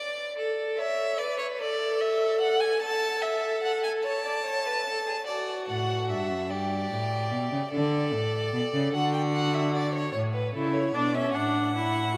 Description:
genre	classical, baroque-style fugue for string quartet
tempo	49 BPM (dotted quarters)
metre	6/8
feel	straight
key	D major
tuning	A4 = 441 Hz
part	rich violin	second line	0.0-12.2 s	F#4 to F#5	-32 LUFS	equal	none
part	rich violin	melody	0.8-10.1 s	C#5 to A5	-33 LUFS	equal	none
part	rich cello	bass	5.7-12.2 s	F#2 to D3	-31 LUFS	equal	none
part	clear viola	accompaniment	10.5-12.1 s	C#4 to E4	-29 LUFS	equal	none
room	wet cathedral reverb, RT60 6.0 s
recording	in a vast, echoing space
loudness	-28 LUFS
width	mono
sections	0.0-5.3 A section; 5.3-12.2 B section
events	none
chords	0.4 A; 1.6 D5/A; 2.8 A5; 4.0 A/C#; 5.3 D; 6.5 G; 7.7 D5; 8.9 D; 10.1 A; 11.3 D/A

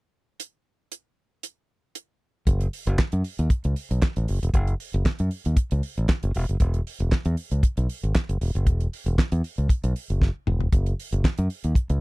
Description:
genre	disco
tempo	116 BPM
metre	4/4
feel	straight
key	unclear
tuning	A4 = 442 Hz
part	damped 70s drum kit	drums	0.4-12.0 s	handclaps, hi-hat, kick drum, snare drum, toms	-23 LUFS	equal	none
part	modern bright fingered electric bass	bass	2.5-12.0 s	E1 to F#2	-23 LUFS	equal	none
room	little or no reverb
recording	dry, close 1970s-style studio recording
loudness	-22 LUFS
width	side -24 dB against mid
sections	0.4-2.5 A section; 2.5-12.0 B section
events	drum fill 10.2-10.7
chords	none

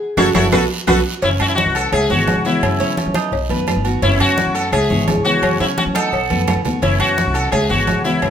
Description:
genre	latin, Cuban son and guajira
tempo	172 BPM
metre	4/4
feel	straight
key	unclear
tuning	A4 = 441 Hz
part	sitar	melody	0.2-8.3 s	E4 to C#5	-19 LUFS	left 2 dB	none
part	fingerpicked steel-string acoustic guitar	accompaniment	0.2-8.3 s	C#3 to F#4	-24 LUFS	left 4 dB	none
part	Cuban tres	arpeggios	0.2-8.3 s	C#4 to C#5	-23 LUFS	right 4 dB	none
part	upright bass	bass	0.2-8.3 s	F#1 to F#3	-21 LUFS	equal	none
part	bongos and cowbell	percussion	0.2-8.3 s	none	-26 LUFS	left 5 dB	none
part	claves	percussion	0.2-8.3 s	none	-31 LUFS	right 3 dB	none
part	congas	percussion	0.2-8.3 s	none	-24 LUFS	equal	none
part	guiro	percussion	0.2-8.3 s	none	-32 LUFS	right 5 dB	none
part	timbales and agogo bells	percussion	0.2-8.3 s	none	-26 LUFS	right 7 dB	none
part	mellow hollow silver concert flute	second line	1.2-8.3 s	C#5 to F#5	-27 LUFS	right 5 dB	none
room	moderate large studio reverb, RT60 1.0 s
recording	minimal, uncompressed stereo recording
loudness	-14 LUFS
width	side -8 dB against mid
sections	0.0-1.2 A section; 1.2-8.3 B section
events	band accent 0.0-1.2; sitar solo 0.0-1.2; drum fill 0.2-1.2, 6.3-6.8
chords	0.0 F#m7; 0.5 B5; 1.2 F#m7; 1.9 C#m7; 2.6 F#m7; 3.3 B7; 4.0 F#m7; 4.7 C#m7; 5.4 F#m7; 6.1 B7; 6.8 F#m7; 7.5 C#m7

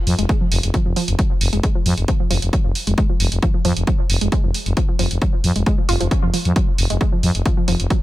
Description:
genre	driving peak-time techno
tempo	134 BPM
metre	4/4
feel	straight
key	F phrygian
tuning	A4 = 442 Hz
part	growling FM bass	bass	0.1-7.9 s	F1 to F2	-18 LUFS	equal	sidechain pumping
part	electronic hi-hat	drums	0.1-8.0 s	none	-25 LUFS	right 3 dB	sidechain pumping on hats
part	wide unison pluck	riff	0.2-7.9 s	F3 to F4	-25 LUFS	right 1 dB	tube saturation, vintage 12-bit sampler grit, sidechain pumping, digital delay
part	electronic kick drum	drums	0.3-8.0 s	none	-18 LUFS	equal	overdrive
room	little or no reverb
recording	none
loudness	-16 LUFS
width	side -16 dB against mid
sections	0.0-8.0 A section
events	filter sweep on synth arpeggio sound 0.0-8.0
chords	0.0 F5

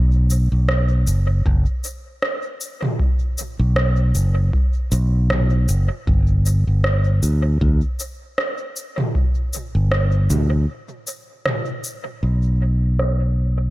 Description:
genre	ambient dub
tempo	78 BPM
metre	4/4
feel	swing 56% on 16ths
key	unclear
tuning	A4 = 444 Hz
part	fingered electric bass	bass	0.0-13.7 s	F#1 to D2	-16 LUFS	equal	none
part	organic electronic drum kit	drums	0.3-13.2 s	cabasa, rim click, toms	-24 LUFS	right 1 dB	low-pass filter on snare, low-pass filter on perc, low-pass filter on toms, low-pass filter on room, dub echo
part	electronic kick drum	drums	1.5-9.3 s	none	-20 LUFS	equal	overdrive
room	little or no reverb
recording	none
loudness	-17 LUFS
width	side -17 dB against mid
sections	0.0-12.2 A section; 12.2-13.7 B section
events	break 10.7-12.2; filter sweep on drum 12.2-13.7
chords	none

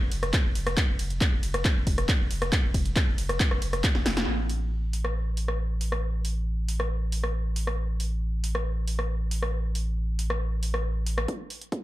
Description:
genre	driving peak-time techno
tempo	137 BPM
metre	4/4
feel	straight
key	unclear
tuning	A4 = 444 Hz
part	saturated sub bass	bass	0.0-11.3 s	F1 to A1	-29 LUFS	equal	tube saturation, sidechain pumping, low-pass filter
part	punchy analog drum machine	drums	0.1-11.8 s	handclaps, hi-hat, ride cymbal, rim click, snare drum	-30 LUFS	equal	none
part	electronic kick drum	drums	0.3-3.9, 11.3-11.8 s	none	-25 LUFS	equal	high-pass filter on kick, high-pass filter on room
room	light reverb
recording	dark, warm production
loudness	-25 LUFS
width	side -16 dB against mid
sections	0.0-4.3 A section; 4.3-11.3 B section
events	drop 0.0-4.3; drum fill 3.9-4.3; band accent 4.2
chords	none

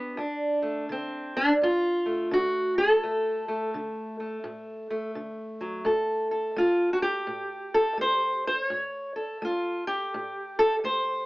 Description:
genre	acoustic country blues, solo or duo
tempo	85 BPM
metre	4/4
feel	swing 63% on 8ths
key	unclear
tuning	A4 = 440 Hz
part	fingerpicked steel-string acoustic guitar	solo	0.0-11.3 s	D2 to C#5	-25 LUFS	equal	none
room	moderate studio reverb, RT60 0.5 s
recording	AM radio sound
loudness	-25 LUFS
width	side -21 dB against mid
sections	0.0-11.3 A section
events	none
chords	0.2 D; 5.9 N.C.

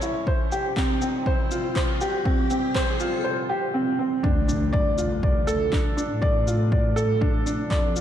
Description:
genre	piano and strings electronica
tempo	121 BPM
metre	4/4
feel	straight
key	D minor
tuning	A4 = 439 Hz
part	warm upright piano	riff	0.0-8.0 s	C4 to D5	-24 LUFS	right 1 dB	digital delay, shimmer reverb
part	electronic shaker and handclaps	drums	0.0-8.0 s	none	-35 LUFS	left 1 dB	studio reverb
part	riser and impact	sound effects	0.0-6.2 s	none	-33 LUFS	left 1 dB	none
part	electronic kick drum	drums	0.3-7.8 s	none	-24 LUFS	equal	overdrive, studio reverb
part	dark studio cello section	bass	4.2-8.0 s	D2 to A2	-27 LUFS	left 1 dB	sidechain pumping
room	moderate concert hall reverb, RT60 1.8 s, small room reverb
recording	dark, warm production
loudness	-21 LUFS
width	side -10 dB against mid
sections	0.0-4.2 A section; 4.2-8.0 B section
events	build-up 0.0-4.2; riser 0.0-3.3; drop 4.2-8.0; impact 4.2-6.2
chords	0.3 Fsus2; 4.2 Dm

